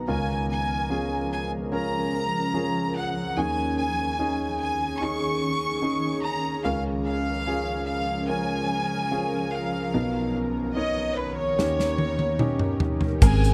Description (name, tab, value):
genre	pop ballad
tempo	73 BPM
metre	4/4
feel	straight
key	Db mixolydian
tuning	A4 = 440 Hz
part	warm concert grand piano	accompaniment	0.0-13.5 s	Cb2 to Db5	-30 LUFS	equal	none
part	shimmering ambient pad	sustained chords	0.0-13.5 s	C3 to Bb4	-34 LUFS	equal	chorus, built-in reverb
part	clear chamber violin section	melody	0.1-13.5 s	Cb5 to Db6	-31 LUFS	equal	none
part	modern studio drum kit	drums	11.6-13.4 s	crash cymbal, kick drum, snare drum, toms	-25 LUFS	equal	none
part	flamenco guitar	arpeggios	13.2-13.5 s	Ab3 to Bb4	-32 LUFS	equal	none
part	vintage muted fingered electric bass	bass	13.2-13.5 s	Ab1	-21 LUFS	equal	none
part	tube shaker	percussion	13.2-13.5 s	none	-40 LUFS	equal	none
room	little or no reverb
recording	dark, warm production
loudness	-26 LUFS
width	mono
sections	0.0-13.2 A section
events	drum fill 11.6-13.2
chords	0.1 Db6; 3.4 Absus4/Eb; 6.6 Db6; 9.9 Cbmaj7; 11.6 Eb7